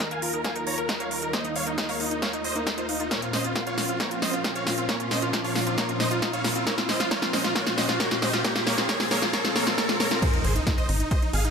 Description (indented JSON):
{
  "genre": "uplifting trance",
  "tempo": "135 BPM",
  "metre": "4/4",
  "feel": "straight",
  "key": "Bb minor",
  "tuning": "A4 = 441 Hz",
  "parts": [
    { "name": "supersaw chords", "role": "melody", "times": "0.0-11.5 s", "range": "Eb4 to Bb5", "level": "-29 LUFS", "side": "right 1 dB", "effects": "sidechain pumping, low-pass filter, tape echo" },
    { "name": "analog string pad", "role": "sustained chords", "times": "0.0-10.2 s", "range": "Eb2 to Bb4", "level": "-34 LUFS", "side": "equal", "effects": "ensemble chorus, vintage 12-bit sampler grit, sidechain pumping" },
    { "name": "analog pluck", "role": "arpeggios", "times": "0.0-10.2 s", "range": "Bb3 to F5", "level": "-33 LUFS", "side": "left 2 dB", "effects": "chorus, sidechain pumping, tape echo" },
    { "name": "big-room dance drum kit", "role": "drums", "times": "0.0-11.5 s", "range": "crash cymbal, hi-hat, ride cymbal, snare drum", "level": "-27 LUFS", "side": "equal", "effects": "none" },
    { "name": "electronic kick drum", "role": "drums", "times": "0.0-11.2 s", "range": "none", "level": "-30 LUFS", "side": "equal", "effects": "high-pass filter on kick, high-pass filter on room" },
    { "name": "riser, swell and impact", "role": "sound effects", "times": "0.2-11.5 s", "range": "none", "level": "-32 LUFS", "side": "equal", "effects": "none" },
    { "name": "tight sequencer bass", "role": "bass", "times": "10.4-11.5 s", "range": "Ab1", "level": "-24 LUFS", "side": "equal", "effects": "sidechain pumping" }
  ],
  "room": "moderate concert hall reverb, RT60 2.0 s",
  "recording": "none",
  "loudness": "-23 LUFS",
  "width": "side -6 dB against mid",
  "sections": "0.0-10.2 A section; 10.2-11.5 B section",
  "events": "build-up 0.0-10.2; drum fill 0.0-10.2; filter sweep on synth pluck 0.0-10.2; riser 0.2-10.2; swell 9.3-10.2; drop 10.2-11.5; impact 10.2-11.5",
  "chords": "0.0 Ebsus2; 3.1 Bbmadd9; 10.2 Ab"
}